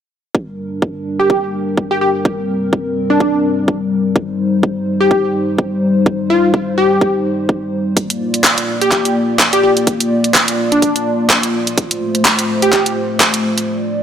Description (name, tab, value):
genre	bass house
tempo	126 BPM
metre	4/4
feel	swing 56% on 16ths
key	G minor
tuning	A4 = 440 Hz
part	dark analog pad	sustained chords	0.3-14.0 s	G3 to D5	-17 LUFS	left 1 dB	chorus, sidechain pumping
part	electronic kick drum	drums	0.3-13.3 s	none	-17 LUFS	equal	high-pass filter on kick
part	plucky unison lead	melody	1.2-13.0 s	D4 to G4	-15 LUFS	equal	wide subtle chorus, digital delay
part	garage drum kit	drums	8.0-13.7 s	handclaps, hi-hat	-14 LUFS	right 1 dB	overdrive
room	moderate lush hall reverb, RT60 2.0 s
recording	none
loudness	-13 LUFS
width	side -9 dB against mid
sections	0.3-14.0 A section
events	break 13.7-14.0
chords	0.3 Gm; 4.2 Cm; 8.0 Bb; 11.8 F